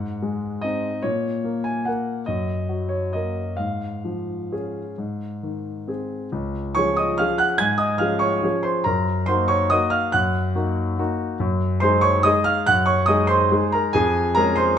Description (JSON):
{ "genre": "classical, piano waltz", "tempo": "123-153 BPM", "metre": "3/4", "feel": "rubato", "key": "Db major", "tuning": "A4 = 440 Hz", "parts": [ { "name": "warm concert grand piano", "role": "solo", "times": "0.0-14.8 s", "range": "Db2 to Ab6", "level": "-19 LUFS", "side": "equal", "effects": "none" } ], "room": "moderate recital hall reverb, RT60 1.4 s", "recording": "minimal, uncompressed stereo recording", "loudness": "-19 LUFS", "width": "side -8 dB against mid", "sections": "0.0-6.3 A section; 6.3-14.8 B section", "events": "none", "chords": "0.0 Ab7; 1.0 N.C.; 2.3 Ebm/Gb; 3.6 Db/Ab; 5.0 Ab; 6.3 Db; 8.9 Ebm/Gb; 11.4 Ab7/Gb; 13.9 Db/F" }